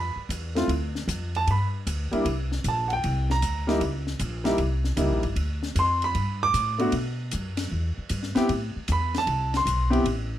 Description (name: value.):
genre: jazz, small-group swing and bop.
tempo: 154 BPM.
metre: 4/4.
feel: swing 67% on 8ths.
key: G mixolydian.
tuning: A4 = 440 Hz.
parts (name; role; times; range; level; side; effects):
warm grand piano; accompaniment; 0.0-10.0 s; G3 to D6; -25 LUFS; equal; none.
upright bass; bass; 0.0-10.4 s; G1 to B2; -27 LUFS; equal; none.
compact cocktail drum kit; drums; 0.3-10.2 s; hi-hat, ride cymbal, snare drum; -35 LUFS; left 2 dB; none.
room: moderate club reverb, RT60 0.7 s.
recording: none.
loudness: -23 LUFS.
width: side -12 dB against mid.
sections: 0.0-10.4 A section.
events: none.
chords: 0.0 G9 (rootless); 0.7 Dm; 1.5 G5; 2.3 C7sus2; 3.8 C#dim7; 5.4 G9; 6.9 B5; 7.7 Em; 8.5 Am.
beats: 0.30 | 0.69 1.08 1.47 1.86 | 2.25 2.64 3.03 3.42 | 3.81 4.20 4.59 4.98 | 5.37 5.76 6.15 6.54 | 6.93 7.32 7.71 8.10 | 8.48 8.87 9.26 9.65 | 10.04.